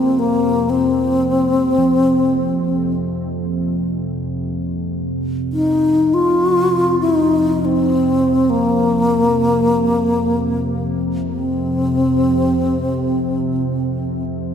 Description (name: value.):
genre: world meditative, free-time meditation music.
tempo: free time.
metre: none.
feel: none.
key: unclear.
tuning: A4 = 440 Hz.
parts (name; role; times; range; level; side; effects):
breathy bass flute; melody; 0.0-14.2 s; Bb3 to F4; -16 LUFS; left 1 dB; dub echo.
deep dark ambient pad; drone; 0.0-14.5 s; F2 to C3; -21 LUFS; left 1 dB; chorus, built-in reverb.
bronze singing bowl; texture; 0.0-10.3 s; F3 to Bb3; -28 LUFS; right 6 dB; none.
room: wet plate reverb, RT60 2.9 s.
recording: echo-heavy mix.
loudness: -15 LUFS.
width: side -8 dB against mid.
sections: 0.0-14.5 A section.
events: none.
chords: none.